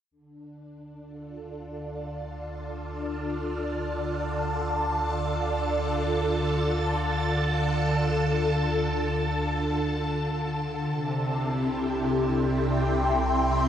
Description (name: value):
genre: ambient, sequencer-driven space music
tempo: free time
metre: none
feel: none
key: D minor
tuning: A4 = 442 Hz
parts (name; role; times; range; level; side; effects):
- phased string machine; sustained chords; 0.1-13.7 s; C3 to A5; -26 LUFS; equal; ensemble chorus, phaser
- warm sub bass; bass; 0.1-13.7 s; C2 to D2; -33 LUFS; equal; none
room: wet huge ambient reverb, RT60 7.5 s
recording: none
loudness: -25 LUFS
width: side -9 dB against mid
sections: 0.1-13.7 A section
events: fade-in on string machine 0.1-13.7; fade-in on sub bass 0.1-13.7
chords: 0.1 Dm; 10.9 C